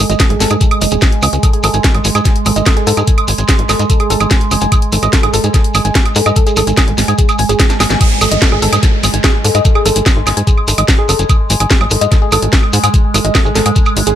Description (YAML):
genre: psychedelic trance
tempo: 146 BPM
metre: 4/4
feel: straight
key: unclear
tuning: A4 = 441 Hz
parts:
  - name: overtone-sweeping drone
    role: sustained chords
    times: 0.0-14.2 s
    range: G#3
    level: -20 LUFS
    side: right 6 dB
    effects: chorus, built-in reverb, sidechain pumping
  - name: woody wave-folded pluck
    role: riff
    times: 0.0-14.2 s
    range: G#4 to A5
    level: -18 LUFS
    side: moving between left 6 dB and right 4 dB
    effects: chorus, auto-pan, sidechain pumping, ping-pong delay
  - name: tight sequencer bass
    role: bass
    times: 0.0-14.1 s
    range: D#1 to G#2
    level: -15 LUFS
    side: equal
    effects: none
  - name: drum and bass drum kit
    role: drums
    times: 0.1-14.2 s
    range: crash cymbal, hi-hat, snare drum, woodblock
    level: -16 LUFS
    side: right 1 dB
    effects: none
  - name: shekere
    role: percussion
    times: 0.1-14.1 s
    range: none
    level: -21 LUFS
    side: right 1 dB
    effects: none
  - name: electronic kick drum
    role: drums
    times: 0.2-13.8 s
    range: none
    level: -12 LUFS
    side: equal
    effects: none
  - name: downlifter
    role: sound effects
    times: 8.0-11.3 s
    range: none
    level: -23 LUFS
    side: equal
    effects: none
room: little or no reverb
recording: none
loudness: -9 LUFS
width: side -10 dB against mid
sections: 0.0-8.0 A section; 8.0-14.2 B section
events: drum fill 7.7-8.0; band accent 7.9; drop 8.0-14.2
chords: 0.0 G#5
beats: 0.20 0.61 1.02 | 1.43 1.84 2.25 2.66 | 3.08 3.49 3.90 4.31 | 4.72 5.13 5.54 5.95 | 6.36 6.77 7.18 7.60 | 8.01 8.42 8.83 9.24 | 9.65 10.06 10.47 10.88 | 11.29 11.71 12.12 12.53 | 12.94 13.35 13.76